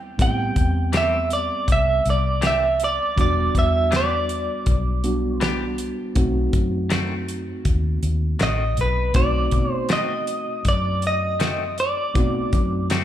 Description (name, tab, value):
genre	straight-eighth soul blues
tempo	80 BPM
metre	4/4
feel	straight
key	unclear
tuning	A4 = 441 Hz
part	direct-recorded clean electric guitar	melody	0.0-12.9 s	B4 to G5	-22 LUFS	right 2 dB	slapback echo
part	mellow reed electric piano	accompaniment	0.0-13.0 s	G3 to G4	-28 LUFS	right 2 dB	medium tremolo, slapback echo
part	vintage muted fingered electric bass	bass	0.2-13.0 s	E1 to B2	-23 LUFS	left 1 dB	none
part	damped 70s drum kit	drums	0.2-13.0 s	hi-hat, kick drum, snare drum	-23 LUFS	equal	none
part	clean electric guitar	stabs	0.9-13.0 s	D#3 to G4	-30 LUFS	left 7 dB	wide subtle chorus, slapback echo
room	small room ambience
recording	live gig heard through the venue's PA, club reverb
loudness	-19 LUFS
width	side -11 dB against mid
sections	0.0-13.0 A section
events	none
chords	0.0 Am7; 3.2 Em7; 6.2 B7b9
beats	| 0.19 0.94 1.69 2.43 | 3.18 3.92 4.67 5.42 | 6.17 6.91 7.66 8.41 | 9.16 9.90 10.65 11.40 | 12.15 12.90